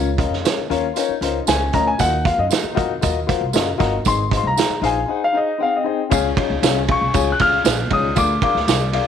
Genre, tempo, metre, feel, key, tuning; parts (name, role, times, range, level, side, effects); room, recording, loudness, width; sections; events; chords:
uptempo 1960s-style soul; 117 BPM; 4/4; straight; Db major; A4 = 440 Hz
dark upright piano; accompaniment; 0.0-9.1 s; Ab2 to Ab5; -22 LUFS; left 11 dB
upright bass; bass; 0.0-9.0 s; Gb1 to Gb2; -24 LUFS; right 1 dB
electric guitar through a small old amp; riff; 0.2-9.1 s; C4 to F4; -30 LUFS; left 13 dB; tremolo
vintage drum kit; drums; 0.2-9.1 s; hi-hat, kick drum, ride cymbal, snare drum; -21 LUFS; right 6 dB
tambourine; percussion; 0.5-8.8 s; -30 LUFS; right 16 dB
warm baby grand piano; melody; 1.5-9.1 s; Eb5 to Gb6; -20 LUFS; left 1 dB; slapback echo
small room ambience; 1960s-style stereo with parts hard left and right; -16 LUFS; side -8 dB against mid
0.0-6.1 A section; 6.1-9.1 B section
grand piano solo 0.0-6.1
0.0 Bbm/Db; 2.0 Ebmadd9; 4.1 Ab; 6.1 Db; 8.2 Bb7